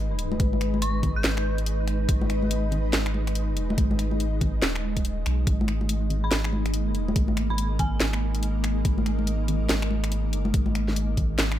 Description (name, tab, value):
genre	deep dubstep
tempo	142 BPM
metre	4/4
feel	swing 62% on 16ths, half-time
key	G# minor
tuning	A4 = 441 Hz
part	granular cloud pad	sustained chords	0.0-11.6 s	G#3 to B4	-31 LUFS	equal	built-in reverb
part	soft dub sub bass	bass	0.0-11.6 s	D#1 to B1	-26 LUFS	equal	none
part	garage drum kit	drums	0.2-11.6 s	finger snaps, handclaps, hi-hat, snare drum	-28 LUFS	equal	none
part	congas	percussion	0.3-11.3 s	none	-31 LUFS	left 2 dB	dub echo
part	electronic kick drum	drums	0.4-11.3 s	none	-24 LUFS	equal	overdrive
part	dark detuned synth bell	melody	0.8-1.6, 6.2-8.2 s	G#5 to G6	-38 LUFS	equal	chorus, dub echo
room	little or no reverb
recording	none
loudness	-23 LUFS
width	side -12 dB against mid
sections	0.0-11.6 A section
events	none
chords	0.0 G#m